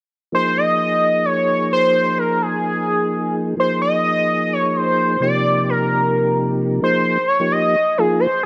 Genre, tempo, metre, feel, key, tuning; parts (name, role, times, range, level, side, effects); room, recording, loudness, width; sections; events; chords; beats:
jazz; free time; Bb dorian; A4 = 440 Hz
octave-doubled lead; melody; 0.3-8.5 s; Ab4 to Eb5; -19 LUFS; equal; chorus, analog delay
percussive tonewheel organ; accompaniment; 0.3-8.3 s; C3 to Ab4; -23 LUFS; equal; slow rotary speaker, chorus vibrato
moderate echo chamber reverb, RT60 1.6 s; dark, warm production; -18 LUFS; mono
0.3-6.8 A section; 6.8-8.5 B section
0.3 Bbm11; 5.2 Cm11; 6.8 Bb9sus4
free time